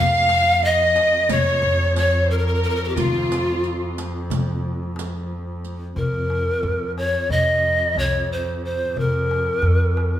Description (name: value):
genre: Turkish makam ensemble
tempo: 180 BPM (eighths)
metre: 9/8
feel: straight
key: F makam ussak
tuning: A4 = 439 Hz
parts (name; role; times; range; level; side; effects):
- pan flute; melody; 0.0-10.2 s; F4 to F5; -20 LUFS; equal; none
- rich studio violin section; second line; 0.0-4.0 s; F4 to F5; -25 LUFS; left 1 dB; none
- upright bass; bass; 0.0-10.1 s; C2 to F3; -24 LUFS; equal; none
- rich double bass; drone; 0.0-10.2 s; F2; -29 LUFS; equal; none
- darbuka; percussion; 0.3-10.1 s; none; -28 LUFS; left 1 dB; none
- riq; percussion; 0.3-5.7 s; none; -33 LUFS; right 6 dB; none
room: wet recital hall reverb, RT60 1.3 s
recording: recorded in a church or concert hall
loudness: -18 LUFS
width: side -11 dB against mid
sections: 0.0-6.0 A section; 6.0-10.2 B section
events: none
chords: none